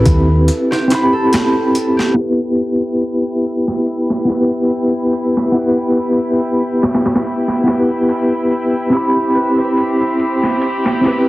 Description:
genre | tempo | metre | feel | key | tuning
trip hop | 71 BPM | 4/4 | swing 54% on 16ths | E minor | A4 = 440 Hz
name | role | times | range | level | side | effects
mellow tine electric piano | accompaniment | 0.0-11.3 s | B3 to B5 | -14 LUFS | equal | tremolo, tape echo
concert harp | arpeggios | 0.0-11.3 s | E4 to G5 | -23 LUFS | left 1 dB | tape echo
hollow-body short-scale fingered electric bass | bass | 0.1-0.5 s | D#2 | -12 LUFS | equal | none
boom bap sampler-style drum kit | drums | 0.1-11.3 s | hi-hat, kick drum, snare drum | -18 LUFS | equal | overdrive, low-pass filter on hats, low-pass filter on snare, low-pass filter on kick, low-pass filter on room
clear chamber violin section | sustained chords | 2.2-11.3 s | C4 to B5 | -24 LUFS | equal | low-pass filter
room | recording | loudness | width
light reverb | heavily compressed radio sound, vinyl crackle, low-pass filter | -13 LUFS | side -18 dB against mid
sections
0.0-2.2 A section; 2.2-11.3 B section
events
filter sweep on tine electric piano 0.0-2.2; break 0.5-2.2; filter sweep on violin section 2.2-11.3; filter sweep 2.2-11.3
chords
0.0 Am9; 2.2 Em; 8.9 Cmaj7

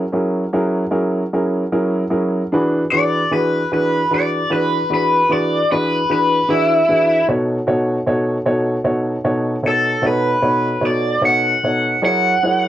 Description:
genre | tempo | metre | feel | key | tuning
blues | 50 BPM (dotted quarters) | 12/8 | straight | unclear | A4 = 439 Hz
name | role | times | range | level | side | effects
clear upright piano | accompaniment | 0.0-12.7 s | B2 to C#5 | -18 LUFS | equal | cassette tape
overdriven electric guitar | melody | 2.9-12.7 s | E4 to F#5 | -16 LUFS | equal | phaser, cassette tape
room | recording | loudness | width
moderate booth ambience, RT60 0.2 s | home recording on cassette | -15 LUFS | side -12 dB against mid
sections
0.0-12.7 A section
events
none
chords
0.0 F#9; 2.5 E9; 7.3 B9; 12.0 F#9

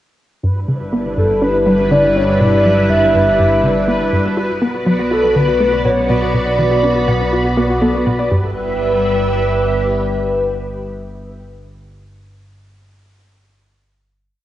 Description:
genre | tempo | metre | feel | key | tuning
ambient, sequencer-driven space music | 122 BPM | 4/4 | straight | G major | A4 = 438 Hz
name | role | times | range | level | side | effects
string machine, full ensemble | sustained chords | 0.7-11.3 s | G3 to E5 | -18 LUFS | equal | ensemble chorus
warbly dusty pluck | arpeggios | 0.4-8.5 s | F#4 to G5 | -26 LUFS | right 1 dB | chorus, auto-pan, plate reverb, ping-pong delay
tight sequencer bass | riff | 0.4-8.5 s | G2 to F#4 | -18 LUFS | equal | ensemble chorus, ping-pong delay
analog drone | bass | 1.1-9.7 s | G1 to B1 | -23 LUFS | equal | chorus
bubbling stepped-filter texture | texture | 0.4-8.3 s | B4 | -25 LUFS | equal | chorus, built-in reverb, plate reverb
soft octave-layered synth lead | melody | 1.2-11.3 s | A4 to E5 | -16 LUFS | equal | chorus, phaser, cassette tape, plate reverb, ping-pong delay
room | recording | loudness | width
wet studio reverb, RT60 0.7 s | home recording on cassette, nothing above 10.9 kHz | -12 LUFS | side -13 dB against mid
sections
0.4-8.3 A section; 8.3-12.2 final chord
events
fade-in on synth arpeggio sound 0.4-8.3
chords
0.4 G6; 4.4 Bm; 8.3 G6

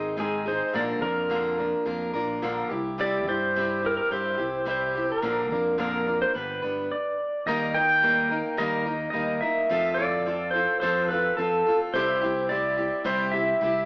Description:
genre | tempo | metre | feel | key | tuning
folk rock and heartland rock | 107 BPM | 4/4 | straight | C mixolydian | A4 = 441 Hz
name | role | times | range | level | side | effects
picked steel-string acoustic guitar | accompaniment | 0.0-13.9 s | Ab2 to B4 | -28 LUFS | equal | none
fingered electric bass | bass | 0.0-13.9 s | G1 to G2 | -37 LUFS | equal | none
pedal steel guitar | melody | 0.2-13.9 s | Ab4 to G5 | -24 LUFS | equal | none
room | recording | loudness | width
wet large studio reverb, RT60 1.2 s | band playing live in one room, small speaker sound | -23 LUFS | side -28 dB against mid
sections
0.0-7.5 A section; 7.5-13.9 B section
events
none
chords
0.0 Ab; 0.7 Bb; 2.7 C; 5.2 Bb; 6.3 G; 7.5 Eb; 9.7 F; 11.9 C

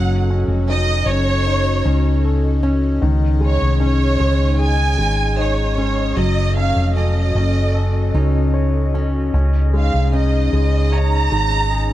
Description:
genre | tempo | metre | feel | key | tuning
pop | 76 BPM | 4/4 | straight | unclear | A4 = 436 Hz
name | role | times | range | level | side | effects
warm studio violin section | melody | 0.0-11.9 s | Db5 to Bb5 | -22 LUFS | right 2 dB | none
warm concert grand piano | accompaniment | 0.0-11.9 s | Eb3 to Db5 | -24 LUFS | left 4 dB | none
airy breathy pad | sustained chords | 0.0-11.9 s | Db4 to Eb5 | -27 LUFS | left 3 dB | chorus
fingerpicked plugged-in steel-string acoustic guitar | arpeggios | 0.0-11.9 s | Gb3 to Eb4 | -28 LUFS | right 3 dB | none
hollow-body short-scale fingered electric bass | bass | 0.0-11.9 s | F1 to Db2 | -17 LUFS | equal | none
room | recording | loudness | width
small room ambience | dark, warm production | -15 LUFS | side -14 dB against mid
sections
0.0-11.9 A section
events
none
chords
0.0 Gbm6; 3.0 Dbsus2; 6.2 Gbm6; 9.3 Dbsus2

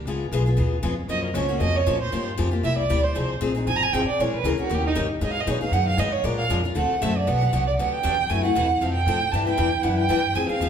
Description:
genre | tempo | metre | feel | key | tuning
acoustic string swing (jazz manouche) | 233 BPM | 4/4 | swing 55% on 8ths | G major from 7.3 s | A4 = 440 Hz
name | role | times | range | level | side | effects
upright bass | bass | 0.0-10.7 s | G1 to Bb2 | -25 LUFS | equal | none
picked steel-string acoustic guitar | accompaniment | 0.1-10.7 s | C3 to B4 | -26 LUFS | left 5 dB | none
warm violin | second line | 1.1-10.7 s | Eb4 to Bb5 | -24 LUFS | right 5 dB | none
room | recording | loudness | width
wet large studio reverb, RT60 1.4 s | band playing live in one room | -20 LUFS | side -8 dB against mid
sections
0.0-7.3 A section; 7.3-10.7 A section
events
violin solo 0.0-10.7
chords
0.1 Db7; 1.1 Gbmaj7; 2.1 Gm7b5; 2.6 C7; 3.2 Fm11; 4.2 Bbm7b5; 4.7 Eb7; 5.2 Abm9; 6.2 Bb7; 6.8 D7; 7.3 Gmaj7; 8.3 F#m7b5; 8.8 F9; 9.3 Em9

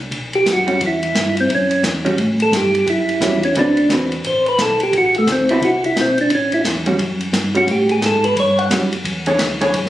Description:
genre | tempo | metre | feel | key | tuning
soul jazz organ trio | 175 BPM | 4/4 | swing 62% on 8ths | A mixolydian | A4 = 440 Hz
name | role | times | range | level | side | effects
mellow tonewheel organ | bass | 0.0-9.9 s | A1 to A2 | -24 LUFS | equal | chorus vibrato, slow rotary speaker
warm soul drum kit | drums | 0.1-9.9 s | hi-hat, kick drum, ride cymbal, snare drum | -22 LUFS | equal | none
percussive tonewheel organ | melody | 0.4-8.7 s | A3 to F#5 | -16 LUFS | equal | slow rotary speaker, plate reverb
vintage hollow-body jazz guitar | accompaniment | 0.7-9.7 s | D3 to C#5 | -19 LUFS | right 1 dB | none
room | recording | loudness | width
wet studio reverb, RT60 0.9 s | recorded on a phone in the room, club reverb | -14 LUFS | side -14 dB against mid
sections
0.0-9.9 A section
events
tonewheel organ solo 0.0-9.9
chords
0.0 D6 (rootless); 0.8 A6; 3.6 D13; 6.3 A6; 9.1 E13

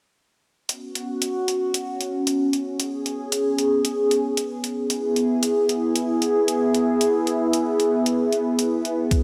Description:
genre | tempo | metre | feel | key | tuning
synthwave | 114 BPM | 4/4 | straight | unclear | A4 = 440 Hz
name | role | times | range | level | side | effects
warm analog pad | sustained chords | 0.7-9.2 s | B3 to G#4 | -23 LUFS | equal | chorus, sidechain pumping
electronic hi-hat | drums | 0.7-9.2 s | none | -28 LUFS | equal | overdrive
electronic kick drum | drums | 9.1-9.2 s | none | -20 LUFS | equal | overdrive
room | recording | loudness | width
wet lush hall reverb, RT60 2.8 s | bright 1980s-style digital production | -23 LUFS | mono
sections
0.7-9.2 A section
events
filter sweep on analog synth pad 0.7-9.2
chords
0.7 Bsus2; 4.9 E

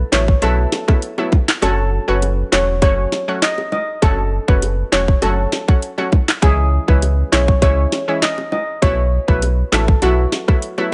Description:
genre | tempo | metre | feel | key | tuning
dancehall | 100 BPM | 4/4 | straight | F# minor | A4 = 440 Hz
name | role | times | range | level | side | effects
sub bass with octave | bass | 0.0-10.3 s | E1 to C#2 | -20 LUFS | equal | none
steel pan | melody | 0.1-10.5 s | F#4 to D#5 | -23 LUFS | equal | digital delay
analog pluck | accompaniment | 0.1-10.9 s | E3 to F#4 | -25 LUFS | equal | chorus, sidechain pumping
island pop drum kit | drums | 0.1-10.8 s | handclaps, hi-hat, kick drum, rim click, snare drum | -17 LUFS | equal | overdrive, vintage 12-bit sampler grit
bongos | percussion | 0.1-10.9 s | none | -29 LUFS | equal | none
room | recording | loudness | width
digital ambience | nothing above 10.7 kHz | -16 LUFS | mono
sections
0.0-10.9 A section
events
kick muted 1.6-2.8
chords
0.0 B7sus4; 1.6 F#m; 6.4 C#m; 8.8 B7sus4

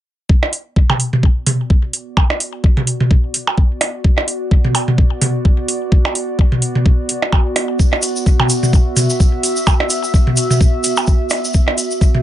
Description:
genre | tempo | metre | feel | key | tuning
minimal techno | 128 BPM | 4/4 | swing 57% on 16ths | B minor | A4 = 439 Hz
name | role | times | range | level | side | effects
electronic kick drum | drums | 0.3-12.1 s | none | -12 LUFS | equal | none
warbly tape-like pad | texture | 1.5-12.2 s | B3 to E5 | -22 LUFS | right 1 dB | chorus, built-in reverb, sidechain pumping
electronic percussion blips and toms | percussion | 0.4-12.2 s | none | -17 LUFS | right 1 dB | ping-pong delay
electronic hi-hat | drums | 0.5-11.9 s | none | -19 LUFS | right 1 dB | none
tube shaker | percussion | 7.8-12.1 s | none | -22 LUFS | equal | none
room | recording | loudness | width
light reverb | nothing above 10.4 kHz | -13 LUFS | side -12 dB against mid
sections
0.3-12.2 A section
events
fade-in on ambient pad 0.3-12.2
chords
0.3 Bm

